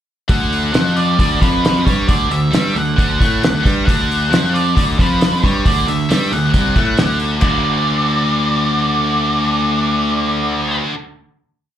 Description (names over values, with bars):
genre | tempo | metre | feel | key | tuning
indie rock | 135 BPM | 4/4 | straight | D major | A4 = 442 Hz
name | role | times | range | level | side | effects
octave-fuzz lead guitar | melody | 0.3-10.8 s | B4 to F#5 | -20 LUFS | right 1 dB | distortion, slapback echo
heavy high-gain guitar | riff | 0.3-10.9 s | C3 to F#4 | -20 LUFS | equal | distortion, slapback echo
fuzz picked electric bass | bass | 0.3-10.8 s | C2 to A2 | -18 LUFS | left 1 dB | overdrive
cloth-damped thuddy drum kit | drums | 0.3-7.5 s | china cymbal, hi-hat, kick drum, snare drum | -17 LUFS | equal | none
room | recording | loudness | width
light reverb | live gig heard through the venue's PA, club reverb | -13 LUFS | side -10 dB against mid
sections
0.3-7.4 verse; 7.4-11.0 final chord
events
none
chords
0.3 D